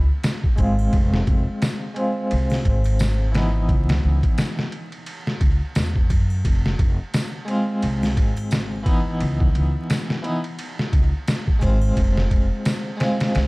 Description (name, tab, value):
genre	trip hop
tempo	87 BPM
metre	4/4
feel	swing 58% on 16ths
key	unclear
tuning	A4 = 441 Hz
part	upright bass	bass	0.0-13.5 s	F1 to Gb2	-21 LUFS	equal	none
part	trip hop sampler-style drum kit	drums	0.2-13.5 s	kick drum, ride cymbal, snare drum	-22 LUFS	equal	none
part	tambourine and triangle	percussion	0.2-12.8 s	none	-44 LUFS	equal	none
part	harpsichord	accompaniment	0.6-13.5 s	E3 to F4	-25 LUFS	equal	tremolo, low-pass filter, tape echo
room	small room ambience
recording	dark, warm production, vinyl crackle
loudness	-18 LUFS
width	side -25 dB against mid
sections	0.0-13.5 A section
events	filter sweep on harpsichord 0.0-13.5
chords	0.0 N.C.; 0.9 Fm; 3.7 Dbm7; 6.4 Fm; 9.2 Dbm7; 12.0 Fm